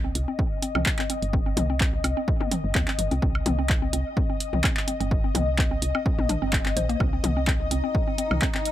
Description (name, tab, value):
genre	minimal techno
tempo	127 BPM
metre	4/4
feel	swing 54% on 16ths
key	C minor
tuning	A4 = 440 Hz
part	mallet-like synth pluck	riff	0.0-8.6 s	Bb3 to C5	-32 LUFS	equal	chorus, sidechain pumping, dub echo
part	woody FM bass	bass	0.0-8.4 s	G1 to Eb2	-27 LUFS	equal	tube saturation, sidechain pumping
part	ethereal airy pad	texture	0.2-8.7 s	Eb5	-32 LUFS	left 5 dB	ensemble chorus, built-in reverb, sidechain pumping
part	punchy analog drum machine	drums	0.2-8.7 s	handclaps, hi-hat	-27 LUFS	equal	none
part	electronic kick drum	drums	0.4-8.5 s	none	-26 LUFS	equal	none
part	electronic toms and woodblock	percussion	0.8-8.4 s	none	-30 LUFS	left 3 dB	overdrive, dub echo
part	swarming drone	texture	7.6-8.7 s	Eb4	-38 LUFS	right 2 dB	built-in reverb, sidechain pumping
room	light reverb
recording	none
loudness	-22 LUFS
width	side -13 dB against mid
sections	0.0-8.7 A section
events	none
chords	0.0 Cm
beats	0.39 0.86 | 1.33 1.80 2.28 2.75 | 3.22 3.69 4.17 4.64 | 5.11 5.58 6.06 6.53 | 7.00 7.47 7.95 8.42